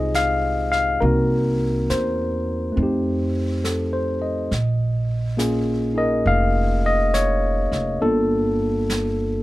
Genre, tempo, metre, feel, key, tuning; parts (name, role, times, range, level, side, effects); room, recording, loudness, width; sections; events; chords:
jazz ballad; 69 BPM; 4/4; swing 66% on 8ths; F minor; A4 = 441 Hz
barky tine electric piano; accompaniment; 0.0-9.4 s; Ab3 to F5; -21 LUFS; left 1 dB; overdrive
upright bass; bass; 0.0-9.4 s; F1 to F2; -23 LUFS; right 1 dB
jazz brush drum kit; drums; 0.1-9.4 s; brushed snare drum, hi-hat, snare drum; -33 LUFS; right 1 dB
little or no reverb; close, detailed microphones; -19 LUFS; side -17 dB against mid
0.0-9.4 A section
0.0 Fm7; 1.0 Cm7b5; 2.8 F7; 4.5 Bbm7; 8.0 Gm9